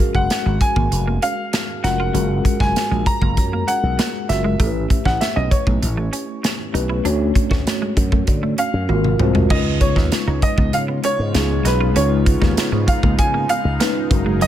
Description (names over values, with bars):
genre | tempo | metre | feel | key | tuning
polished 1980s jazz-funk pop | 98 BPM | 4/4 | straight | unclear | A4 = 440 Hz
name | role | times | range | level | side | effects
clear grand piano | melody | 0.0-14.5 s | B4 to A#5 | -23 LUFS | right 1 dB | none
mellow tine electric piano | accompaniment | 0.0-14.5 s | G#3 to C#5 | -23 LUFS | left 1 dB | medium stereo tremolo, lush chorus
clean electric guitar | riff | 0.0-14.5 s | F#3 to F#4 | -28 LUFS | right 4 dB | analog chorus
modern studio drum kit | drums | 0.0-14.5 s | crash cymbal, hi-hat, kick drum, snare drum, toms | -20 LUFS | equal | none
slap bass with an envelope filter | bass | 0.1-14.5 s | E#1 to D3 | -20 LUFS | equal | none
warm analog pad | sustained chords | 9.5-14.5 s | C#3 to A#4 | -30 LUFS | equal | chorus, tremolo
room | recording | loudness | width
small room reverb | none | -16 LUFS | side -11 dB against mid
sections
0.0-9.5 A section; 9.5-14.5 B section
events
drum fill 8.9-9.5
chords
0.0 F#maj9; 4.6 A9; 7.0 Dmaj7; 8.9 G#13; 9.5 C#9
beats
0.30 0.91 1.53 | 2.14 2.75 3.37 3.98 | 4.59 5.21 5.82 6.44 | 7.05 7.66 8.28 8.89 | 9.51 10.12 10.73 11.35 | 11.96 12.57 13.19 13.80 | 14.41